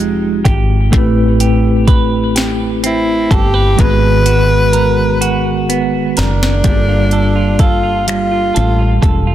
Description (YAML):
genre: slow six-eight R&B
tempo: 42 BPM (dotted quarters)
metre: 6/8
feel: straight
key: unclear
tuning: A4 = 440 Hz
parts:
  - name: semi-hollow electric guitar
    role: second line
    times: 0.0-9.3 s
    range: F3 to B4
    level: -19 LUFS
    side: right 4 dB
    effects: warbly pitch drift, ping-pong delay
  - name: mellow tine electric piano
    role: accompaniment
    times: 0.0-9.3 s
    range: Eb3 to B4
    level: -18 LUFS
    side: equal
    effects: medium stereo tremolo
  - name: woody fretless electric bass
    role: bass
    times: 0.0-9.3 s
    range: E1 to A1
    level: -15 LUFS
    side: equal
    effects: lush chorus
  - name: smooth R&B drum kit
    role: drums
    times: 0.5-9.2 s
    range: finger snaps, hi-hat, kick drum, snare drum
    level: -14 LUFS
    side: equal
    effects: overdrive
  - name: breathy tenor saxophone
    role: melody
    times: 2.9-9.0 s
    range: D4 to Cb5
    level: -16 LUFS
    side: equal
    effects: ping-pong delay
room: digital ambience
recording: dense, heavily limited modern master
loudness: -10 LUFS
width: side -12 dB against mid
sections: 0.0-6.6 A section; 6.6-9.3 B section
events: drum fill 3.8-6.6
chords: 0.0 Fm9; 0.9 Am9; 3.8 Abm9; 6.6 Gm9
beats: | 0.93 2.36 | 3.79 5.22 | 6.64 8.07